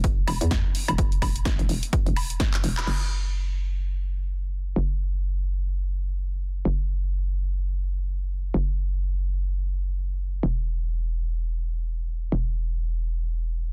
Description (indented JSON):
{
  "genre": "bass house",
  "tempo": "127 BPM",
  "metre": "4/4",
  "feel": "swing 58% on 16ths",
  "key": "unclear",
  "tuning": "A4 = 440 Hz",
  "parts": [
    { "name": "hollow knocking FM bass", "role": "bass", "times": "0.0-13.7 s", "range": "E1 to E2", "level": "-28 LUFS", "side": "equal", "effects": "overdrive, sidechain pumping" },
    { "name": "electronic kick drum", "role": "drums", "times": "0.0-2.5 s", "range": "none", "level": "-26 LUFS", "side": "equal", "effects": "none" },
    { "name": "house drum kit", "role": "drums", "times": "0.0-3.0 s", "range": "crash cymbal, handclaps, hi-hat, snare drum, woodblock", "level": "-33 LUFS", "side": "equal", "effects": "none" }
  ],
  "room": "digital ambience",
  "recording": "dense, heavily limited modern master",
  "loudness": "-27 LUFS",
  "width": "mono",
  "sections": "0.0-2.9 A section; 2.9-13.7 B section",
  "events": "drum fill 2.5-2.9; band accent 2.8",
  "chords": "none",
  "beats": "0.04 0.51 | 0.98 1.46 1.93 2.40 | 2.87 3.35 3.82 4.29 | 4.76 5.24 5.71 6.18 | 6.65 7.13 7.60 8.07 | 8.54 9.02 9.49 9.96 | 10.43 10.90 11.38 11.85 | 12.32 12.79 13.27"
}